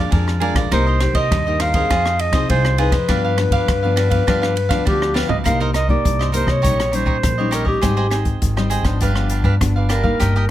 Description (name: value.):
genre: samba and choro.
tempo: 101 BPM.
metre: 4/4.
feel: straight.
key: C minor.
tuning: A4 = 439 Hz.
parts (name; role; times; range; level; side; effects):
cavaquinho; accompaniment; 0.0-10.4 s; D4 to G5; -24 LUFS; right 5 dB; none.
nylon-string guitar; accompaniment; 0.0-10.5 s; F2 to Ab4; -24 LUFS; left 4 dB; none.
upright bass; bass; 0.0-10.5 s; G1 to C3; -20 LUFS; equal; none.
open jazz drum kit; drums; 0.1-10.3 s; hi-hat, kick drum, ride cymbal, rim click, snare drum, toms; -22 LUFS; equal; none.
mellow clarinet; melody; 0.7-10.5 s; G4 to F5; -21 LUFS; left 1 dB; none.
room: little or no reverb.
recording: close, detailed microphones.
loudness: -15 LUFS.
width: side -13 dB against mid.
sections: 0.0-5.5 A section; 5.5-10.5 B section.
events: drum fill 5.2.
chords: 0.0 Bb7; 0.7 Cm7; 1.9 Fm7; 3.1 G7; 5.5 Cm7; 6.6 Eb7/Bb; 7.8 Abmaj7; 9.0 G7.